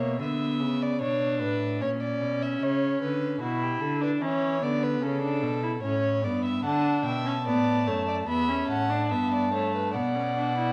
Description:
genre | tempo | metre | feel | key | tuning
classical, baroque-style fugue for string quartet | 74 BPM | 4/4 | straight | unclear | A4 = 439 Hz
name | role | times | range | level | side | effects
dark violin | melody | 0.0-0.2, 6.6-10.7 s | E5 to B5 | -32 LUFS | equal | none
warm violin | second line | 0.0-10.7 s | F#4 to F#5 | -34 LUFS | equal | none
rich viola | accompaniment | 0.0-10.7 s | A3 to E4 | -31 LUFS | equal | none
rich cello | bass | 0.0-10.7 s | E2 to E3 | -33 LUFS | equal | none
room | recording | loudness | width
wet recital hall reverb, RT60 1.3 s | worn, warbling old tape, cassette tape, warbly pitch drift | -27 LUFS | mono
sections
0.0-10.7 A section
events
none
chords
0.2 Bm; 1.8 Bmadd9; 3.4 Bm; 5.0 A; 6.7 D; 8.3 Em; 10.0 Bm

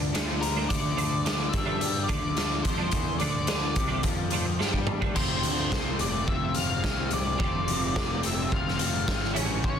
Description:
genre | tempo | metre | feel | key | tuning
indie rock | 108 BPM | 4/4 | straight | unclear | A4 = 440 Hz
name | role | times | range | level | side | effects
phased string machine | sustained chords | 0.0-5.1 s | D4 to D5 | -42 LUFS | equal | none
overdriven electric guitar | riff | 0.0-9.8 s | A2 to F4 | -35 LUFS | left 8 dB | none
twelve-string electric guitar | riff | 0.0-9.8 s | E3 to G4 | -35 LUFS | right 9 dB | ensemble chorus
fuzz picked electric bass | bass | 0.0-9.8 s | F1 to G2 | -31 LUFS | equal | overdrive
raw garage drum kit | drums | 0.1-9.8 s | crash cymbal, hi-hat, kick drum, snare drum, toms | -28 LUFS | equal | none
octave-fuzz lead guitar | melody | 0.4-9.8 s | Bb4 to F5 | -32 LUFS | left 2 dB | distortion, analog delay
room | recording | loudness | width
small room ambience | dense, heavily limited modern master | -24 LUFS | side -8 dB against mid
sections
0.0-5.2 A section; 5.2-9.8 B section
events
drum fill 4.6-5.2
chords
0.0 Dm; 5.2 Fadd9

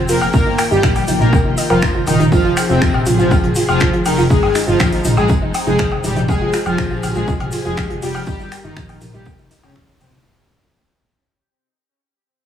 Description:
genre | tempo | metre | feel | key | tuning
melodic techno | 121 BPM | 4/4 | straight | unclear | A4 = 439 Hz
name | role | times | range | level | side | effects
warm studio string section | sustained chords | 0.0-10.2 s | Eb3 to G5 | -26 LUFS | left 1 dB | sidechain pumping
dark detuned saw bass | bass | 0.0-10.2 s | Eb1 to Bb1 | -21 LUFS | left 1 dB | sidechain pumping
analog synth brass | melody | 0.1-10.2 s | C3 to Bb4 | -20 LUFS | equal | chorus, sidechain pumping, dub echo
soft supersaw | second line | 0.1-10.2 s | C3 to Bb3 | -24 LUFS | equal | sidechain pumping, tape echo
soft round pluck | arpeggios | 0.1-10.2 s | Eb4 to F6 | -23 LUFS | right 2 dB | chorus, sidechain pumping, tape echo
house drum kit | drums | 0.1-10.2 s | finger snaps, hi-hat, toms, woodblock | -21 LUFS | left 1 dB | overdrive, sidechain pumping on hats, sidechain pumping on perc, sidechain pumping on toms
warm soul drum kit | drums | 0.1-10.2 s | hi-hat, snare drum, tambourine | -36 LUFS | left 2 dB | sidechain pumping on hats, high-pass filter on hats, high-pass filter on snare, sidechain pumping on perc, high-pass filter on perc, high-pass filter on room
tube shaker | percussion | 0.1-10.2 s | none | -33 LUFS | left 3 dB | none
electronic kick drum | drums | 0.3-9.9 s | none | -18 LUFS | equal | overdrive
room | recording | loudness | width
light reverb, small room ambience | none | -13 LUFS | side -9 dB against mid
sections
0.0-10.3 A section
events
drop 0.0-10.3; fade-out 5.0-10.3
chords
0.3 Ebadd9/F; 2.3 Fm; 4.3 Ab/F; 6.3 Fm; 8.3 Ebadd9/F

